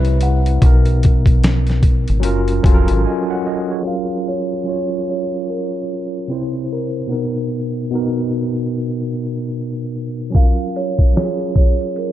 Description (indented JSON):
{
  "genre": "lo-fi hip hop",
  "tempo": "74 BPM",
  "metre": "4/4",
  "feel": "swing 60% on 16ths",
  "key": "F# major",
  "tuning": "A4 = 440 Hz",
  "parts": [
    { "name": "buzzing kalimba", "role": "melody", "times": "0.0-12.1 s", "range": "A#4 to F#5", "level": "-26 LUFS", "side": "right 3 dB", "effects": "low-pass filter, tape echo" },
    { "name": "bright tine electric piano", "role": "accompaniment", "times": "0.0-12.1 s", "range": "B2 to G#5", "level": "-20 LUFS", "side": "equal", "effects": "medium stereo tremolo, low-pass filter" },
    { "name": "deep dub fingered electric bass", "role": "bass", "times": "0.0-3.0 s", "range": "E#1 to C2", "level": "-16 LUFS", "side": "equal", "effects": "none" },
    { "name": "boom bap sampler-style drum kit", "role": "drums", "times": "0.0-3.0, 10.3-12.1 s", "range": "hi-hat, kick drum, snare drum", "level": "-13 LUFS", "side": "equal", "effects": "none" }
  ],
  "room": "digital ambience",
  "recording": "dark, warm production, low-pass filter",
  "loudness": "-15 LUFS",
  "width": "side -12 dB against mid",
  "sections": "0.0-3.9 A section; 3.9-12.1 B section",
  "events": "break 3.1-3.9; filter sweep 3.9-12.1",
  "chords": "0.0 Cmaj7; 0.6 Bmaj7; 2.2 F#maj7; 6.3 C; 7.1 Bmaj7; 10.4 F#maj7"
}